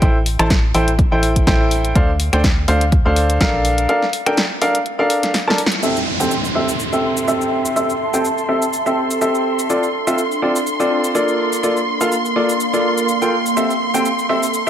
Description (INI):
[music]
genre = piano house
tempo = 124 BPM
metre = 4/4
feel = swing 55% on 16ths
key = A phrygian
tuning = A4 = 441 Hz
[part]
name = clear baby grand piano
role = riff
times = 0.0-14.7 s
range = Bb3 to A5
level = -18 LUFS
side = equal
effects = sidechain pumping, low-pass filter, ping-pong delay
[part]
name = organ-like FM bass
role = bass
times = 0.0-3.9 s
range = A1 to D2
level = -18 LUFS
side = equal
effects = sidechain pumping
[part]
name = electronic kick drum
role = drums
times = 0.0-3.5 s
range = none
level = -16 LUFS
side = equal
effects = none
[part]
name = punchy analog drum machine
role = drums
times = 0.0-14.7 s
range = cabasa, finger snaps, hi-hat, snare drum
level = -22 LUFS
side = equal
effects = none
[part]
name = rich studio violin section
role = sustained chords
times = 5.8-14.7 s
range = C6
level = -23 LUFS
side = right 1 dB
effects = sidechain pumping, low-pass filter
[part]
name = downlifter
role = sound effects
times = 5.8-9.7 s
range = none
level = -24 LUFS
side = right 1 dB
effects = none
[part]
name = warbly tape-like pad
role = texture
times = 6.9-14.7 s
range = Bb3 to C6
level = -22 LUFS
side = right 1 dB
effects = chorus, built-in reverb, sidechain pumping
[sound]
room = moderate lush hall reverb, RT60 2.2 s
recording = none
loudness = -14 LUFS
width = side -9 dB against mid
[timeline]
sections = 0.0-5.8 A section; 5.8-14.7 B section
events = break 3.9-5.8; drum fill 5.3-5.8; band accent 5.7; filter sweep on grand piano 5.8-14.7; filter sweep on violin section 5.8-14.7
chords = 0.0 Am7; 2.0 Dm7; 3.6 Bbmaj7; 5.8 Am7; 9.7 Dm7; 11.4 Bbmaj7; 13.6 Am7